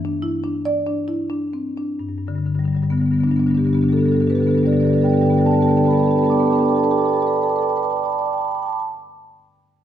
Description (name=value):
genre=classical, contemporary piece for solo marimba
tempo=44 BPM (dotted quarters)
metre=6/8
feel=rubato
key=G major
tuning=A4 = 440 Hz
part: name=marimba with medium mallets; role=solo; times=0.0-8.8 s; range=G2 to D6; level=-17 LUFS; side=equal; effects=none
room=moderate recital hall reverb, RT60 1.5 s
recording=none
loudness=-16 LUFS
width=side -10 dB against mid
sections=0.0-2.0 A section; 2.0-7.4 B section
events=slowing down 0.0-2.0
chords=0.0 Em7/G; 2.0 Gadd9